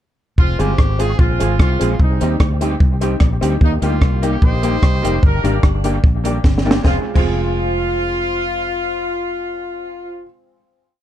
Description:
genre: ska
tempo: 148 BPM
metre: 4/4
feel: straight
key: F dorian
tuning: A4 = 440 Hz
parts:
  - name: warm horn section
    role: melody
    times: 0.4-10.3 s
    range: G3 to C5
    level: -22 LUFS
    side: equal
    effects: none
  - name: fingered electric bass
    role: bass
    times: 0.4-10.2 s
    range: F1 to Eb2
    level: -19 LUFS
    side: equal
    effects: none
  - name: compact cocktail drum kit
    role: drums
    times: 0.4-7.3 s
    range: crash cymbal, hi-hat, kick drum, rim click, snare drum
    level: -15 LUFS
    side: equal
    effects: none
  - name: vintage hollow-body jazz guitar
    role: accompaniment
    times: 0.6-10.7 s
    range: G3 to Ab4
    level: -25 LUFS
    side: right 3 dB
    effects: none
  - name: honky-tonk upright piano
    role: stabs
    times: 0.6-10.2 s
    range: Bb3 to Ab4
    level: -25 LUFS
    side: left 5 dB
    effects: dub echo
room: light reverb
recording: dark, warm production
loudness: -14 LUFS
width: side -11 dB against mid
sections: 0.4-6.8 head; 6.8-10.1 final chord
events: drum fill 6.4-6.8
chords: 0.4 Fm; 2.0 Cm; 3.6 Eb; 5.2 Gm; 6.8 Fm

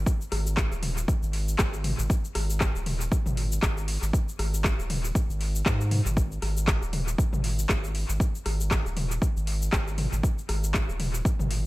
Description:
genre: afro house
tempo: 118 BPM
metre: 4/4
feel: swing 56% on 16ths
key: unclear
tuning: A4 = 440 Hz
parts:
  - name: round analog bass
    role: bass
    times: 0.0-11.7 s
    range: D#1 to G#2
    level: -28 LUFS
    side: equal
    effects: sidechain pumping
  - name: deep house drum kit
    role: drums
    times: 0.1-11.6 s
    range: handclaps, hi-hat, rim click, shaker, toms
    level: -30 LUFS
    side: left 1 dB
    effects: overdrive, dub echo
  - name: electronic kick drum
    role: drums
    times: 0.1-11.4 s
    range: none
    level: -25 LUFS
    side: equal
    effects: overdrive
room: little or no reverb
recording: echo-heavy mix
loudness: -24 LUFS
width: side -19 dB against mid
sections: 0.0-11.7 A section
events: none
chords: none

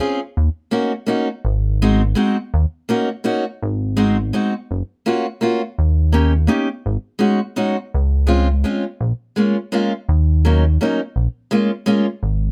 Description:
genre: musette waltz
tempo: 167 BPM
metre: 3/4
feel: straight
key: unclear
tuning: A4 = 439 Hz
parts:
  - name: picked steel-string acoustic guitar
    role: accompaniment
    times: 0.0-12.1 s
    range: Gb3 to Ab4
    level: -19 LUFS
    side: equal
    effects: none
  - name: chorused synth bass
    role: bass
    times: 0.4-12.5 s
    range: Gb1 to Eb2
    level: -18 LUFS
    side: equal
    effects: none
room: little or no reverb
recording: close, detailed microphones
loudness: -19 LUFS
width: mono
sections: 0.4-12.5 A section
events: none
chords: 0.4 Ebm7; 1.5 Ab7; 2.5 Ebm7; 3.6 Ab7; 4.7 Gbmaj7; 5.8 Eb7; 6.9 Ab7sus4; 7.9 Dbmaj7; 9.0 Bbm7; 10.1 Ebm7; 11.2 Bbm7

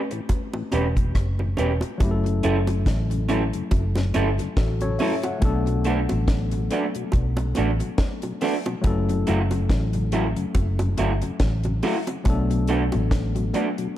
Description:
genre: lovers rock reggae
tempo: 70 BPM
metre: 4/4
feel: swing 57% on 16ths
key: unclear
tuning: A4 = 439 Hz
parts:
  - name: tine electric piano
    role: accompaniment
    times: 0.0-14.0 s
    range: F#3 to F#5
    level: -29 LUFS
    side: left 3 dB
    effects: none
  - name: mellow tonewheel organ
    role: accompaniment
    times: 0.1-13.9 s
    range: F#2 to E4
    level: -33 LUFS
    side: left 4 dB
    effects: slow rotary speaker, tape echo
  - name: electric guitar through a small old amp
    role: stabs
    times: 0.1-13.7 s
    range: A3 to B4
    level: -28 LUFS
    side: right 3 dB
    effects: none
  - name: deep reggae drum kit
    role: drums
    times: 0.1-14.0 s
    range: hi-hat, kick drum, rim click, snare drum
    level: -25 LUFS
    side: equal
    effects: none
  - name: bongos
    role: percussion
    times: 0.3-13.8 s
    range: none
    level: -34 LUFS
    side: right 2 dB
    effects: tape echo
  - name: vintage muted fingered electric bass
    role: bass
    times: 0.7-13.5 s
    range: E1 to B1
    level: -24 LUFS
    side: equal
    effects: none
room: light reverb, small room ambience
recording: dark, warm production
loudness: -20 LUFS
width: side -12 dB against mid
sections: 0.0-2.0 A section; 2.0-14.0 B section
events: none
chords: 0.0 A9; 2.0 F#m7; 5.4 Bm7; 8.8 F#m7; 12.3 Bm7

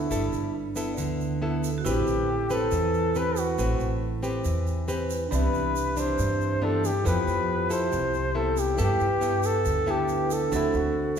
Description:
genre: bossa nova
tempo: 138 BPM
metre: 4/4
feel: straight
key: G major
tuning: A4 = 443 Hz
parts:
  - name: breathy flugelhorn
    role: melody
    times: 0.0-11.2 s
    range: E4 to C5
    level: -27 LUFS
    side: left 2 dB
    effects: none
  - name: vibraphone with medium hard mallets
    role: second line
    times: 0.0-11.2 s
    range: D4 to B4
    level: -33 LUFS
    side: right 4 dB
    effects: none
  - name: nylon-string guitar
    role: accompaniment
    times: 0.0-11.2 s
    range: G2 to B4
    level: -29 LUFS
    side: equal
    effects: none
  - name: upright bass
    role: bass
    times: 0.0-11.2 s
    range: G1 to G2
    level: -30 LUFS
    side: equal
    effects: none
  - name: tube shaker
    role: percussion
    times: 0.1-11.2 s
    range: none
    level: -41 LUFS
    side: right 7 dB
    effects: none
  - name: tine electric piano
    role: accompaniment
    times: 5.3-11.2 s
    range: C4 to B5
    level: -34 LUFS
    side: right 5 dB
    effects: none
room: wet recital hall reverb, RT60 1.5 s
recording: recorded in a church or concert hall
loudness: -23 LUFS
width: side -7 dB against mid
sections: 0.0-11.2 A section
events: none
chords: 0.0 G69; 1.8 Am9; 5.3 Cmaj9; 7.1 Fmaj9#11; 8.8 G69; 10.5 D7

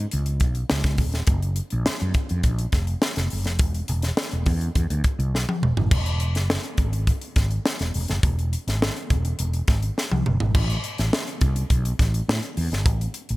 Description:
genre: polished 1980s jazz-funk pop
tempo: 104 BPM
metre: 4/4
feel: straight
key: unclear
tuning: A4 = 440 Hz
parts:
  - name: mellow fretless electric bass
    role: bass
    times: 0.0-13.4 s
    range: D#1 to A2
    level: -24 LUFS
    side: equal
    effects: none
  - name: crisp fusion drum kit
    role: drums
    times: 0.1-13.4 s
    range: crash cymbal, hi-hat, kick drum, snare drum, toms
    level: -23 LUFS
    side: equal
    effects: none
room: little or no reverb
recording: none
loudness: -21 LUFS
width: side -19 dB against mid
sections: 0.0-5.9 A section; 5.9-10.5 B section; 10.5-13.4 C section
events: drum fill 5.3-5.9, 10.0-10.5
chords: none

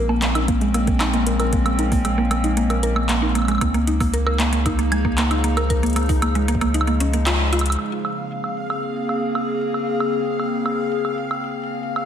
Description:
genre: IDM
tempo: 115 BPM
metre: 4/4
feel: straight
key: Bb minor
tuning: A4 = 440 Hz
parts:
  - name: warbly tape-like pad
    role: sustained chords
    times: 0.0-12.1 s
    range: Db3 to Ab4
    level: -24 LUFS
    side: left 2 dB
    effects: chorus, built-in reverb, phaser
  - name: mallet-like synth pluck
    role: arpeggios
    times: 0.0-7.6 s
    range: Ab3 to Bb4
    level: -23 LUFS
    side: right 2 dB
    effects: chorus, ping-pong delay
  - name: warm sub bass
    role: bass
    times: 0.0-7.8 s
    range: Bb1 to Db2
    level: -22 LUFS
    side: equal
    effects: tube saturation
  - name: electro analog drum machine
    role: drums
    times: 0.1-12.1 s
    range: handclaps, hi-hat, woodblock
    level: -25 LUFS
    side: right 1 dB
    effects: low-pass filter on hats, low-pass filter on perc, low-pass filter on snare, low-pass filter on room
  - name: electronic kick drum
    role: drums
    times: 0.5-6.7 s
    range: none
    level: -24 LUFS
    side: equal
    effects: none
  - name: bubbling stepped-filter texture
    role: texture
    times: 7.9-12.1 s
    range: F5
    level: -30 LUFS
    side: right 1 dB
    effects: chorus, built-in reverb
room: light reverb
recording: none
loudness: -18 LUFS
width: side -9 dB against mid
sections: 0.0-7.8 A section; 7.8-12.1 B section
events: filter sweep on synth arpeggio sound 0.0-7.8; band accent 7.3; drum fill 7.5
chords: 0.0 Bbm9; 3.6 Db69; 7.8 Bbm9

